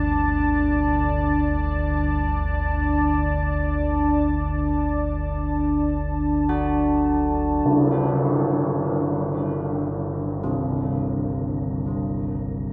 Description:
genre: dark ambient drone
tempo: free time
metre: none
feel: none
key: G harmonic minor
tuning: A4 = 440 Hz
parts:
  - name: deep dark ambient pad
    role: sustained chords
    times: 0.0-12.7 s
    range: G3 to A5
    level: -26 LUFS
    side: equal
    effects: chorus, built-in reverb
  - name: carillon bells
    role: arpeggios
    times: 0.0-12.7 s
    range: C3 to F#4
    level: -35 LUFS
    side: equal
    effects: diffuse ambient delay
  - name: deep rumbling drone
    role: drone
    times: 0.0-12.7 s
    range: G1 to D2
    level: -30 LUFS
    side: equal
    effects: built-in reverb, subtle chorus
  - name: tam-tam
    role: percussion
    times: 7.7-7.9 s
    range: none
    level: -26 LUFS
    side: equal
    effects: low-pass filter on cymbals
  - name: wind-like tuned noise texture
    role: texture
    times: 10.1-12.7 s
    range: Bb3 to Bb4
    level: -48 LUFS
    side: equal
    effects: built-in reverb
room: wet cathedral reverb, RT60 5.1 s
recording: none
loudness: -23 LUFS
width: mono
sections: 0.0-7.7 A section; 7.7-12.7 B section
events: none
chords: 0.0 G5; 7.7 Gm

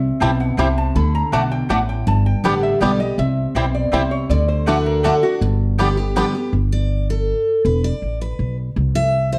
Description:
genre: bluegrass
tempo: 161 BPM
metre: 3/4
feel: straight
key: G major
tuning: A4 = 445 Hz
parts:
  - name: picked steel-string acoustic guitar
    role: accompaniment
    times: 0.0-9.4 s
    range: G2 to E5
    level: -23 LUFS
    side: equal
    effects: none
  - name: upright bass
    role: bass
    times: 0.0-9.4 s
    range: E1 to D2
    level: -22 LUFS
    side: equal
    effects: none
  - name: bluegrass banjo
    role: melody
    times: 0.2-6.3 s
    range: G3 to E4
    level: -26 LUFS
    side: equal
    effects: plate reverb
  - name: lap resonator guitar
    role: second line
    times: 0.2-5.3 s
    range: F#4 to B5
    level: -28 LUFS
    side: equal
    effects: none
  - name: mandolin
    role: stabs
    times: 0.2-6.3 s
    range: A3 to G5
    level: -28 LUFS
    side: equal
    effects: none
room: light reverb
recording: dark, warm production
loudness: -19 LUFS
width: mono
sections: 0.0-6.5 A section; 6.5-9.4 A section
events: resonator guitar played with a steel bar solo 0.0-6.5; steel-string acoustic guitar solo 6.5-9.4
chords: 0.0 C; 1.0 D; 2.1 G; 3.2 C; 4.3 D; 5.4 G; 6.5 G5; 7.7 E5; 8.8 C

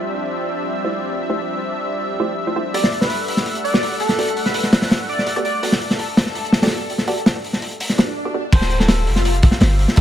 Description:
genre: drum and bass, jungle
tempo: 166 BPM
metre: 4/4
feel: straight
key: D dorian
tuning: A4 = 440 Hz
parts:
  - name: lush unison pad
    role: sustained chords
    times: 0.0-10.0 s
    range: F3 to F#5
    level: -25 LUFS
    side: equal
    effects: chorus, vintage 12-bit sampler grit
  - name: filtered dub chord stab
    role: stabs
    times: 0.8-8.4 s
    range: A3 to D5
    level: -26 LUFS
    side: right 2 dB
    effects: chorus, cassette tape, dub echo
  - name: airy dreamy lead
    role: melody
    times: 2.7-5.6, 8.5-10.0 s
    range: F4 to D5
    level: -25 LUFS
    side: left 1 dB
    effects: chorus, dub echo
  - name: crunchy breakbeat drum kit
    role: drums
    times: 2.7-10.0 s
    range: crash cymbal, hi-hat, kick drum, snare drum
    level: -17 LUFS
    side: equal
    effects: none
  - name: swell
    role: sound effects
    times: 7.9-8.5 s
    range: none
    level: -29 LUFS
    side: right 3 dB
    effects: none
  - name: warm 808-style bass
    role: bass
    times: 8.5-9.9 s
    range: D1 to G1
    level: -17 LUFS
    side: equal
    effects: none
room: light reverb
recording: none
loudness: -16 LUFS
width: side -11 dB against mid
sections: 0.0-8.5 A section; 8.5-10.0 B section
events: swell 7.9-8.5; break 8.2-8.5; drop 8.5-10.0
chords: 0.0 Dm11; 2.7 Em11; 8.5 Dm11

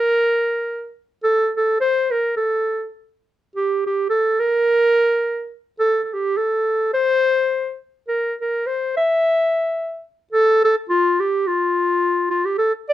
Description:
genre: alpine folk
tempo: 105 BPM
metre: 2/4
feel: swing 55% on 8ths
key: unclear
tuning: A4 = 440 Hz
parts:
  - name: mellow clarinet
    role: solo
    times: 0.0-12.9 s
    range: F4 to E5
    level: -17 LUFS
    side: equal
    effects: none
room: light reverb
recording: dark, warm production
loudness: -17 LUFS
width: side -13 dB against mid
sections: 0.0-12.6 A section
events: none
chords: none

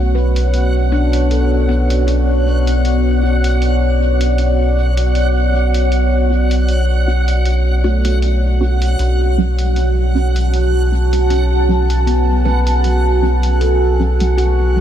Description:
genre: ambient dub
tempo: 78 BPM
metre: 4/4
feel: swing 54% on 16ths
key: B dorian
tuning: A4 = 440 Hz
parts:
  - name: deep dark ambient pad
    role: sustained chords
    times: 0.0-14.8 s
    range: B3 to A5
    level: -19 LUFS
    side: right 1 dB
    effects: chorus, built-in reverb
  - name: handpan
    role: arpeggios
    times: 0.0-14.8 s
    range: A3 to B4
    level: -25 LUFS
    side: left 3 dB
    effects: low-pass filter, dub echo
  - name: soft dub sub bass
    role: bass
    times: 0.0-14.8 s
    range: B1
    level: -14 LUFS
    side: equal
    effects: none
  - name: backwards swelling texture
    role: texture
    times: 0.0-14.8 s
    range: F#5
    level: -26 LUFS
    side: right 2 dB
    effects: built-in reverb
  - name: filtered dub chord stab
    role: stabs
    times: 0.1-14.8 s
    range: F#3 to F#4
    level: -26 LUFS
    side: right 1 dB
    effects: phaser, analog chorus, vintage 12-bit sampler grit, dub echo
  - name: electronic hi-hat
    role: drums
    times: 0.4-14.5 s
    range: none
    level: -32 LUFS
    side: left 1 dB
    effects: small room ambience, dub echo
room: moderate huge ambient reverb, RT60 6.6 s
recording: dreamy mix soaked in reverb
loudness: -12 LUFS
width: side -10 dB against mid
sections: 0.0-14.8 A section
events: none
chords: 0.0 Bmadd9; 9.0 F#madd9/B

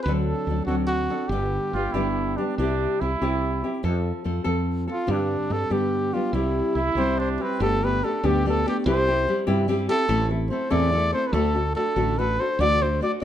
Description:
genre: mexican folk, mariachi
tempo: 96 BPM (dotted quarters)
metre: 6/8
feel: rubato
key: C major, G major from 7.6 s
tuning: A4 = 441 Hz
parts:
  - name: mellow trumpet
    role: melody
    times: 0.0-2.4, 4.9-13.1 s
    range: D4 to D5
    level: -26 LUFS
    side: equal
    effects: plate reverb
  - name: nylon-string guitar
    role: accompaniment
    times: 0.0-13.2 s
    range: G2 to D5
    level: -25 LUFS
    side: left 1 dB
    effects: none
  - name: woody fretless electric bass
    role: bass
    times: 0.1-13.0 s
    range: G1 to G2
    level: -26 LUFS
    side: right 1 dB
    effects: none
  - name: warm trumpet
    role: second line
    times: 1.7-3.8, 6.7-7.6 s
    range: C4 to F4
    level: -28 LUFS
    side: right 5 dB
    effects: none
room: moderate small room reverb, RT60 0.5 s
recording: none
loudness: -21 LUFS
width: side -10 dB against mid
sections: 0.0-7.6 A section; 7.6-13.2 B section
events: none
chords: 0.1 D7; 1.3 G; 2.6 C; 3.8 F; 5.1 Gsus4; 5.7 G; 6.3 C; 7.6 Gadd9; 8.9 C; 10.1 Am; 11.3 D; 12.6 Dadd9

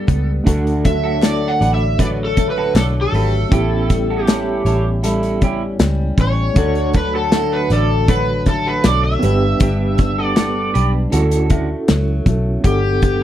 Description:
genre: indie pop, bedroom pop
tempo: 79 BPM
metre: 4/4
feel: straight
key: D major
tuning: A4 = 442 Hz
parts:
  - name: overdriven slide guitar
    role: melody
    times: 0.0-13.2 s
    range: G4 to F#5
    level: -20 LUFS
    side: equal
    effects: lush chorus, slapback echo
  - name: flamenco guitar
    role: accompaniment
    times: 0.0-13.2 s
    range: G2 to E4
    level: -24 LUFS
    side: left 3 dB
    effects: lush chorus, warbly pitch drift
  - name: mellow tine electric piano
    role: accompaniment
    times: 0.0-13.2 s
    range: A3 to F#5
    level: -24 LUFS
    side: right 3 dB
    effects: medium tremolo
  - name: vintage muted fingered electric bass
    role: bass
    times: 0.1-13.2 s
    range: G1 to D2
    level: -19 LUFS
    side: equal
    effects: none
  - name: loose indie drum kit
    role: drums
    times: 0.1-13.2 s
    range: hi-hat, kick drum, snare drum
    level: -17 LUFS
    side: equal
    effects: none
  - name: electric guitar through a small old amp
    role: second line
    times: 0.5-11.7 s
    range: D4 to D5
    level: -26 LUFS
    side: right 4 dB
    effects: lush chorus, slapback echo
  - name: group handclap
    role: percussion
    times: 1.2-12.1 s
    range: none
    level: -32 LUFS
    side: left 5 dB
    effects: none
room: little or no reverb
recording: none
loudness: -14 LUFS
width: side -12 dB against mid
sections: 0.0-12.6 A section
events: electric slide guitar solo 0.0-12.6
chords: 0.5 D; 3.5 A7; 6.6 D; 9.2 G; 11.1 Dmaj7; 12.6 Gmaj7

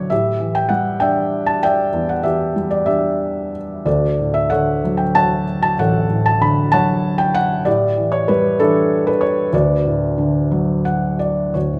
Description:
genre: classical, lyrical solo piano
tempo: 58-69 BPM (dotted quarters)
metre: 6/8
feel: rubato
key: D major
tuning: A4 = 440 Hz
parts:
  - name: felt-muted upright piano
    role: solo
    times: 0.0-11.8 s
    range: A1 to B5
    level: -18 LUFS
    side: equal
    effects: none
room: moderate recital hall reverb, RT60 1.3 s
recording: none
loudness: -17 LUFS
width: mono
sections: 0.0-11.6 A section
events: felt piano fill 10.5-11.6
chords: 0.1 A7sus4; 3.9 Dmaj7; 7.7 A7sus4; 9.5 D6

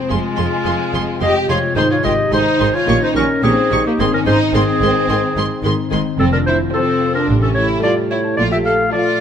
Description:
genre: cinematic, playful, whimsical film cue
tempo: 109 BPM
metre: 4/4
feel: straight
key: F major from 6.2 s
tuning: A4 = 440 Hz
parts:
  - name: vibraphone with soft mallets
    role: melody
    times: 0.0-9.2 s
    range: Ab3 to A4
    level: -22 LUFS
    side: right 3 dB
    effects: none
  - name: rich studio violin section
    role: second line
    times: 0.0-9.2 s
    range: Ab3 to A4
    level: -22 LUFS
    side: left 2 dB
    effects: none
  - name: dark French horn section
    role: sustained chords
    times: 0.0-9.2 s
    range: Ab3 to G4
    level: -25 LUFS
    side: left 3 dB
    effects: none
  - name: concert harp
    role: arpeggios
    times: 0.0-9.2 s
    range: F2 to C6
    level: -24 LUFS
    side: left 10 dB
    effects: none
  - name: rich studio violin section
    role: melody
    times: 0.1-9.2 s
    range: A5 to Db6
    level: -26 LUFS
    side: left 1 dB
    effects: none
  - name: warm clarinet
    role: second line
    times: 0.1-9.2 s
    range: F4 to F5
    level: -19 LUFS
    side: equal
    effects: none
  - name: rich studio viola section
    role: accompaniment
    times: 0.1-9.2 s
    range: Eb3 to C5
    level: -25 LUFS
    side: right 2 dB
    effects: none
  - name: clear studio double bass section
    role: bass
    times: 0.1-8.8 s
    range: F1 to Bb1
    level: -24 LUFS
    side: right 4 dB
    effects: none
  - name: rich studio cello section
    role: bass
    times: 0.1-8.8 s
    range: F2 to Bb2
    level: -23 LUFS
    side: right 3 dB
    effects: none
room: light reverb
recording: close, detailed microphones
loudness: -13 LUFS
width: side -8 dB against mid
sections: 0.0-9.2 A section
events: none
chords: 0.0 Fm; 1.8 Ab; 2.9 Eb7/Bb; 4.0 Ab; 6.2 F; 7.3 A5; 8.4 Bb5

